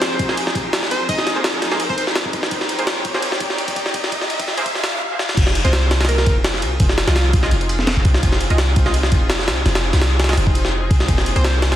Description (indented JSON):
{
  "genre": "drum and bass, jungle",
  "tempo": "168 BPM",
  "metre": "4/4",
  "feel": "swing 54% on 16ths",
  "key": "F minor",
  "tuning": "A4 = 441 Hz",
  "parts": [
    { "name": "plucky unison lead", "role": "melody", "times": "0.0-2.0, 5.6-7.3, 11.4-11.7 s", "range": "F4 to Eb5", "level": "-26 LUFS", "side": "equal", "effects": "dub echo" },
    { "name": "rich studio string section", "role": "sustained chords", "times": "0.0-11.8 s", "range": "F3 to Bb4", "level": "-27 LUFS", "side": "left 1 dB", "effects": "vintage 12-bit sampler grit" },
    { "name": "band-passed chord stab", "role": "stabs", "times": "0.0-11.8 s", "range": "Ab3 to Eb5", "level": "-28 LUFS", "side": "right 2 dB", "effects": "none" },
    { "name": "jungle sampler-style drum kit", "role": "drums", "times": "0.0-11.8 s", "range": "crash cymbal, kick drum, ride cymbal, snare drum", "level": "-18 LUFS", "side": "equal", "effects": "soft clipping on snare" },
    { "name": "riser", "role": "sound effects", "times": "0.0-5.0 s", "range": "none", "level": "-27 LUFS", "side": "equal", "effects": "none" },
    { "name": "warm 808-style bass", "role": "bass", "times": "5.4-11.8 s", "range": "F1 to C2", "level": "-18 LUFS", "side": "equal", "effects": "none" }
  ],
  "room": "light reverb",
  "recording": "dense, heavily limited modern master, vinyl crackle, high-pass filter",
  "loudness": "-15 LUFS",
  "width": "side -12 dB against mid",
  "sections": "0.0-5.4 A section; 5.4-11.8 B section",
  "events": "build-up 0.0-5.4; riser 0.0-5.0; drum fill 5.2; drop 5.4-11.8",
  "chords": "0.0 Abadd9/F; 5.4 Fm7; 11.1 Abadd9/F"
}